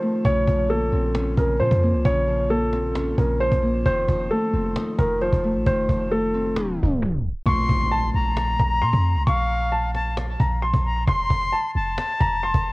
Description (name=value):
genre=hip hop, trap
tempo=133 BPM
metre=4/4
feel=half-time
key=Bb harmonic minor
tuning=A4 = 442 Hz
part: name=dark concert grand piano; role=melody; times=0.0-12.7 s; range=A4 to Db6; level=-24 LUFS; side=equal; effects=cassette tape, tape echo
part: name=Celtic harp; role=accompaniment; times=0.0-10.6 s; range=Db3 to Eb4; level=-26 LUFS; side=left 1 dB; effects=cassette tape
part: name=clean 808-style bass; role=bass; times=0.2-12.7 s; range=F1 to Bb2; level=-24 LUFS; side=equal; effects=none
part: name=cajon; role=drums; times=0.2-12.6 s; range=none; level=-26 LUFS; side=equal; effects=cassette tape
part: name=bright reedy jazz flute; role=second line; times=7.5-12.7 s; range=F5 to C6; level=-25 LUFS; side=left 2 dB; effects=cassette tape, tape echo
part: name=impact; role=sound effects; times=7.5-9.3 s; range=none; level=-34 LUFS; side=equal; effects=none
room=little or no reverb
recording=home recording on cassette, tape stop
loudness=-19 LUFS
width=side -22 dB against mid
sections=0.0-7.5 A section; 7.5-12.7 B section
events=break 0.0; tape stop 6.6-7.5; impact 7.5-9.3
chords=0.2 Bbmadd9; 3.9 F7; 7.5 Bbmadd9; 11.1 F